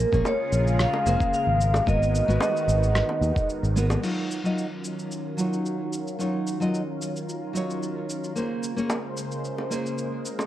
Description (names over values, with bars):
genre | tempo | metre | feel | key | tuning
sunset chillout | 111 BPM | 4/4 | swing 53% on 16ths | Eb minor | A4 = 440 Hz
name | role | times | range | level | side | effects
vibraphone with hard mallets | melody | 0.0-3.5 s | Bb4 to F5 | -25 LUFS | equal | ping-pong delay
nylon-string guitar | accompaniment | 0.0-10.2 s | Gb3 to Eb5 | -29 LUFS | equal | auto-pan, ping-pong delay
lush unison pad | sustained chords | 0.0-10.5 s | Db3 to C5 | -31 LUFS | right 1 dB | chorus, phaser
fingered electric bass | bass | 0.0-4.0 s | F1 to Eb2 | -23 LUFS | equal | none
dusty soul sampler-style drum kit | drums | 0.1-10.5 s | cabasa, crash cymbal, rim click | -35 LUFS | equal | overdrive, studio ambience
electronic kick drum | drums | 0.1-3.5 s | none | -26 LUFS | equal | overdrive, studio ambience
bongos | percussion | 0.3-4.0, 8.9-10.5 s | none | -30 LUFS | equal | none
room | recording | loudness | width
moderate plate reverb, RT60 1.6 s | worn, warbling old tape, cassette tape, warbly pitch drift | -23 LUFS | side -13 dB against mid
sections
0.0-4.0 A section; 4.0-10.5 B section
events
filter sweep on analog synth pad 4.0-10.5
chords
0.0 Bbm9; 1.6 Abm9; 4.0 Ebm9; 8.4 Bbm9